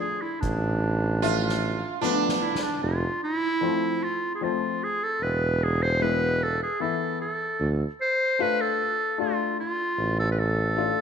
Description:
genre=klezmer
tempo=75 BPM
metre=3/4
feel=straight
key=D dorian sharp4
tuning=A4 = 441 Hz
part: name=bright clarinet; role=melody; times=0.0-11.0 s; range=D4 to C5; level=-26 LUFS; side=right 1 dB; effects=none
part: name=warm upright piano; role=accompaniment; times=0.0-11.0 s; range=E3 to E5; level=-30 LUFS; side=left 8 dB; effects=none
part: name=warm tuba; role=bass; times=0.4-10.9 s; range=E1 to D2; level=-26 LUFS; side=right 1 dB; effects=none
part: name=soft-mallet drum kit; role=drums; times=0.4-2.7 s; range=hi-hat, kick drum, snare drum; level=-35 LUFS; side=left 2 dB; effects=none
part: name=sitar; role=second line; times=1.2-2.8 s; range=D4 to F4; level=-28 LUFS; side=right 8 dB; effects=none
room=moderate echo chamber reverb, RT60 2.1 s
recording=1960s-style stereo with parts hard left and right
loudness=-23 LUFS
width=side -7 dB against mid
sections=0.0-2.8 A section; 2.8-11.0 A section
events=drum fill 1.2-2.8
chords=0.0 Dm; 2.8 F; 5.2 E; 7.6 Dm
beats=| 0.42 1.22 2.02 | 2.82 3.62 4.41 | 5.21 6.01 6.80 | 7.60 8.40 9.19 | 9.98 10.78

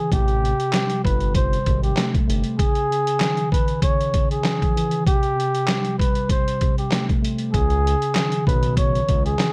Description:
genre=hip hop, boom-bap hip-hop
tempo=97 BPM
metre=4/4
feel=swing 54% on 16ths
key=unclear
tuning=A4 = 440 Hz
part: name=trumpet with bucket mute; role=melody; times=0.0-9.5 s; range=G4 to C#5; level=-26 LUFS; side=equal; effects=high-pass filter, low-pass filter
part: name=mellow tine electric piano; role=accompaniment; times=0.0-9.5 s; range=C3 to A3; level=-28 LUFS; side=equal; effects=cassette tape, high-pass filter, low-pass filter
part: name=smooth synth bass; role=bass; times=0.1-2.4, 7.5-9.4 s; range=G1 to C#2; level=-25 LUFS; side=equal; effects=none
part: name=trip hop sampler-style drum kit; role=drums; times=0.1-9.5 s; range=handclaps, hi-hat, kick drum, snare drum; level=-24 LUFS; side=equal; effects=none
room=light reverb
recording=dark, warm production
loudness=-21 LUFS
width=mono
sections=0.0-9.5 A section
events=none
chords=0.1 Am7; 2.6 C#madd9; 5.1 Am7; 7.5 C#7sus2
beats=| 0.12 0.73 1.35 1.97 | 2.59 3.21 3.83 4.45 | 5.07 5.68 6.30 6.92 | 7.54 8.16 8.78 9.39

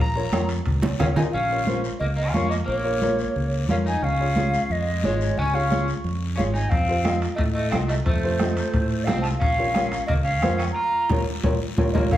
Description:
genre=latin, cumbia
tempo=178 BPM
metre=4/4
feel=straight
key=Bb minor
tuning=A4 = 440 Hz
part: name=electric guitar at the edge of break-up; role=second line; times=0.0-12.2 s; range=Ab3 to Bb5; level=-30 LUFS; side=left 2 dB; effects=none
part: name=fingered electric bass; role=bass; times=0.0-12.2 s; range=Ab1 to A2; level=-26 LUFS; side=equal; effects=none
part: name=clear upright piano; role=accompaniment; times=0.2-12.1 s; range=F4 to Eb5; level=-29 LUFS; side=left 1 dB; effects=none
part: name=bombo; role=percussion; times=0.3-1.2, 6.7-12.2 s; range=none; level=-26 LUFS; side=left 1 dB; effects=none
part: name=congas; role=percussion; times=0.3-12.0 s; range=none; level=-28 LUFS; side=right 2 dB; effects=none
part: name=guiro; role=percussion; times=0.3-12.2 s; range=none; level=-40 LUFS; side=left 5 dB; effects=none
part: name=timbales and cowbell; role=percussion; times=0.3-1.2, 6.7-12.2 s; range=none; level=-36 LUFS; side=right 3 dB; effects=none
part: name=hollow concert flute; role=melody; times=1.0-12.2 s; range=C5 to Bb5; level=-26 LUFS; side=right 1 dB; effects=none
room=wet large studio reverb, RT60 1.2 s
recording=heard from further back in the room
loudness=-20 LUFS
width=side -13 dB against mid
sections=0.0-1.3 A section; 1.3-12.1 B section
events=clean electric guitar solo 0.0-1.3; drum fill 0.8-1.3, 11.4-12.1; band accent 10.8-12.1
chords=0.0 Bbm; 4.0 Db; 6.7 F7; 9.4 Bbm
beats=0.33 0.66 1.00 | 1.34 1.67 2.01 2.35 | 2.68 3.02 3.35 3.69 | 4.03 4.37 4.70 5.04 | 5.38 5.71 6.05 6.38 | 6.72 7.06 7.40 7.73 | 8.07 8.41 8.74 9.08 | 9.42 9.76 10.09 10.43 | 10.77 11.10 11.44 11.78 | 12.11

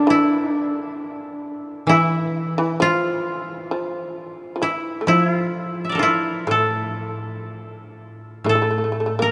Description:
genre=japanese traditional, Japanese chamber music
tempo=59-67 BPM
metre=4/4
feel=rubato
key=A miyako bushi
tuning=A4 = 440 Hz
part: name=koto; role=melody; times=0.0-9.3 s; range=D4 to E5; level=-24 LUFS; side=equal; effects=none
part: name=shamisen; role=second line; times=0.0-9.3 s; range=D3 to Bb3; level=-28 LUFS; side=equal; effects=none
part: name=koto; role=accompaniment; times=1.9-9.3 s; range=A2 to F3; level=-27 LUFS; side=equal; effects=none
room=wet cathedral reverb, RT60 5.5 s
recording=nothing above 10.9 kHz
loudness=-21 LUFS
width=mono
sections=0.0-9.3 A section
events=none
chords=none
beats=0.08 | 0.99 1.89 2.80 3.72 | 4.63 5.54 6.48 7.47 | 8.47

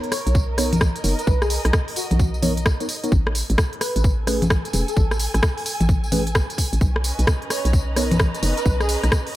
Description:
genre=UK garage, two-step garage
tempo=130 BPM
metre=4/4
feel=swing 64% on 16ths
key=B major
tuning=A4 = 439 Hz
part: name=mellow tine electric piano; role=stabs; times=0.0-8.5 s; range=A3 to C#5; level=-26 LUFS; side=right 1 dB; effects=phaser, dub echo
part: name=garage drum kit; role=drums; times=0.0-9.3 s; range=congas, hi-hat, rim click, tambourine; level=-24 LUFS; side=left 1 dB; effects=none
part: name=dark studio string section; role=texture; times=0.0-9.4 s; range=C#4 to A#5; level=-32 LUFS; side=right 1 dB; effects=sidechain pumping
part: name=airy dreamy lead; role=melody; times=0.1-9.0 s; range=F#4 to C#5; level=-30 LUFS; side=equal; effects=chorus, dub echo
part: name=hollow knocking FM bass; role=bass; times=0.3-9.1 s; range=E1 to B1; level=-22 LUFS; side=equal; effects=none
part: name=electronic kick drum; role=drums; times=0.3-9.2 s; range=none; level=-20 LUFS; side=equal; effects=none
room=little or no reverb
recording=none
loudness=-18 LUFS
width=side -15 dB against mid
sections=0.0-9.4 A section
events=none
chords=0.0 Bmaj9; 3.1 Amaj7(no3); 6.8 Bmaj9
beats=0.35 0.81 | 1.27 1.73 2.20 2.66 | 3.12 3.58 4.04 4.50 | 4.96 5.43 5.89 6.35 | 6.81 7.27 7.73 8.20 | 8.66 9.12

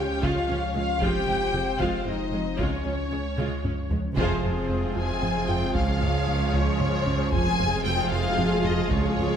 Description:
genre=cinematic, hybrid orchestral and electronic film score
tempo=76 BPM (dotted quarters)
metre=6/8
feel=straight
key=F minor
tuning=A4 = 444 Hz
part: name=warm symphonic violin section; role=melody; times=0.0-9.4 s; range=C5 to Ab5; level=-31 LUFS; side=left 4 dB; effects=none
part: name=dark symphonic violin section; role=second line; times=0.0-9.4 s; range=Ab4 to G5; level=-32 LUFS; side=left 3 dB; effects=none
part: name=warm symphonic viola section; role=accompaniment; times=0.0-9.4 s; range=Ab3 to F4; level=-34 LUFS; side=right 2 dB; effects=none
part: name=hollow soft pad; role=sustained chords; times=0.0-9.4 s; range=F3 to Ab4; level=-33 LUFS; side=left 1 dB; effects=chorus
part: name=mellow French horn section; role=sustained chords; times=0.0-9.4 s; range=Ab3 to G4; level=-33 LUFS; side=left 3 dB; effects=none
part: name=tight sequenced synth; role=arpeggios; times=0.0-9.3 s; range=Db3 to F4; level=-37 LUFS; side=equal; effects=none
part: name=warm sub bass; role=bass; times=0.0-9.4 s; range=F1 to Db2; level=-34 LUFS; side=equal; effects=none
part: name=warm symphonic cello section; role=bass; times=0.0-9.4 s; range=Db2 to F2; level=-32 LUFS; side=right 4 dB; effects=none
part: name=warm symphonic double bass section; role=bass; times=0.0-9.4 s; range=F1 to Db2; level=-34 LUFS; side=right 4 dB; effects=none
part: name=solo taiko drums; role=drums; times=0.2-9.4 s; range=none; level=-32 LUFS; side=equal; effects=none
part: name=clear trombone section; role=sustained chords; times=4.2-9.4 s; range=C3 to F3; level=-35 LUFS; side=right 3 dB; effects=none
part: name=rubbery square bass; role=riff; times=4.2-9.3 s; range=Db2 to F3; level=-30 LUFS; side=right 2 dB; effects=none
room=moderate concert hall reverb, RT60 2.2 s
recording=none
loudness=-23 LUFS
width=side -8 dB against mid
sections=0.0-4.2 A section; 4.2-9.4 B section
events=drum fill 3.4-4.2; band accent 4.2-4.7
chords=0.0 Db; 1.0 Fm; 2.6 Db; 4.2 Fm; 5.8 Db; 7.3 Fm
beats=0.23 | 1.01 1.80 | 2.59 3.38 | 4.17 4.96 | 5.75 6.54 | 7.33 8.12 | 8.91

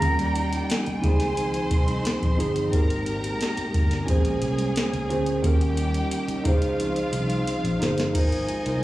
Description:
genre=lush 1970s-style soul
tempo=88 BPM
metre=4/4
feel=straight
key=unclear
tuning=A4 = 435 Hz
part: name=breathy jazz flute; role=melody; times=0.0-2.4 s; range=Ab5 to Bb5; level=-29 LUFS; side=right 1 dB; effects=slapback echo
part: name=bright studio violin section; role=second line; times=0.0-8.8 s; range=G3 to C6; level=-33 LUFS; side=equal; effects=slapback echo, tape echo
part: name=mellow tine electric piano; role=accompaniment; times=0.0-8.8 s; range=G3 to C5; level=-27 LUFS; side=right 1 dB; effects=medium stereo tremolo, slapback echo
part: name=soft string machine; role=sustained chords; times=0.0-8.8 s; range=Bb2 to G4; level=-32 LUFS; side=right 1 dB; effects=ensemble chorus
part: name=vintage muted fingered electric bass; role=bass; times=0.0-8.8 s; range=G1 to Eb2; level=-27 LUFS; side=equal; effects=none
part: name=soft vintage rhythm box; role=drums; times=0.0-8.8 s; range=crash cymbal, hi-hat, kick drum, snare drum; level=-25 LUFS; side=equal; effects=none
room=little or no reverb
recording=live gig heard through the venue's PA, club reverb, studio reverb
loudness=-22 LUFS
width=side -16 dB against mid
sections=0.0-8.2 A section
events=drum fill 5.4-8.2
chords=0.0 Eb7; 1.0 Dbmaj9; 2.7 Abmaj9; 4.1 Bbm9; 5.4 Eb7; 6.5 Dbmaj9; 8.2 Ab69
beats=| 0.02 0.70 1.38 2.05 | 2.73 3.41 4.09 4.76 | 5.44 6.12 6.80 7.48 | 8.16 8.84

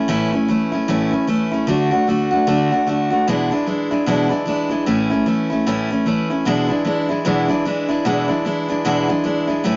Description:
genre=rock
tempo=151 BPM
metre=4/4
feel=swing 60% on 8ths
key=unclear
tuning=A4 = 439 Hz
part: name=picked steel-string acoustic guitar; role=solo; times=0.0-9.8 s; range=E2 to F#4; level=-19 LUFS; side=equal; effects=none
room=light reverb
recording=nothing above 7.6 kHz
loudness=-19 LUFS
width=mono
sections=0.0-9.8 A section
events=none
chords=0.0 A; 1.7 D; 3.3 E7; 4.9 A; 6.5 E7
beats=| 0.09 0.49 0.89 1.28 | 1.68 2.08 2.48 2.88 | 3.27 3.67 4.07 4.47 | 4.87 5.27 5.66 6.06 | 6.46 6.86 7.26 7.66 | 8.05 8.45 8.85 9.25 | 9.65

